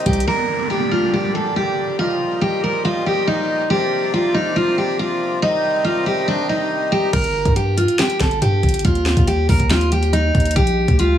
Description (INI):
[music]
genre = hip hop, trap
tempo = 140 BPM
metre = 4/4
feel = half-time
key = G minor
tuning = A4 = 440 Hz
[part]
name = picked steel-string acoustic guitar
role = melody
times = 0.0-11.2 s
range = D4 to Bb4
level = -18 LUFS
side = equal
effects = low-pass filter, digital delay
[part]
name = accordion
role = sustained chords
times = 0.0-7.1 s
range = Bb2 to Eb4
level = -25 LUFS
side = left 2 dB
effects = none
[part]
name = long sustained 808-style bass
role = bass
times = 0.1-0.3, 7.1-11.2 s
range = G1 to G2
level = -19 LUFS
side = equal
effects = none
[part]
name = trap drum kit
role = drums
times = 0.1-0.3, 7.1-11.1 s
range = crash cymbal, hi-hat, kick drum, snare drum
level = -19 LUFS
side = equal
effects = vintage 12-bit sampler grit
[part]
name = downlifter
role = sound effects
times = 0.3-3.7 s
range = none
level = -26 LUFS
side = right 1 dB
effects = none
[sound]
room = light reverb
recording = small room ambience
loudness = -16 LUFS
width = side -10 dB against mid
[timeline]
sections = 0.3-7.1 A section; 7.1-11.2 B section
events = none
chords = 0.3 Gm; 2.0 Ebadd9; 3.7 Bbadd9; 5.4 Cm; 7.1 Gm; 8.8 Ebsus2; 10.6 Bb